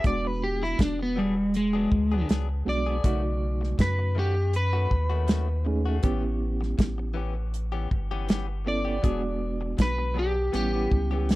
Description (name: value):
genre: straight-eighth soul blues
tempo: 80 BPM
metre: 4/4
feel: swing 55% on 16ths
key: unclear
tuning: A4 = 441 Hz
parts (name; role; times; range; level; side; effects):
- electric guitar at the edge of break-up; melody; 0.0-11.4 s; G3 to D5; -28 LUFS; equal; none
- mellow reed electric piano; accompaniment; 0.0-11.4 s; C#3 to A4; -31 LUFS; right 3 dB; fast tremolo
- direct-recorded clean electric guitar; stabs; 0.0-11.4 s; D#3 to G#4; -38 LUFS; left 8 dB; spring reverb
- pure sine sub bass; bass; 0.0-11.4 s; E1 to F#2; -28 LUFS; equal; none
- warm soul drum kit; drums; 0.0-11.4 s; hi-hat, kick drum, snare drum; -24 LUFS; equal; none
room: little or no reverb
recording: none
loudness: -24 LUFS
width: side -18 dB against mid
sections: 0.0-11.4 A section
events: clean electric guitar solo 0.0-11.4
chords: 0.0 E9; 3.0 B9; 6.0 A9; 9.0 E9; 10.5 A9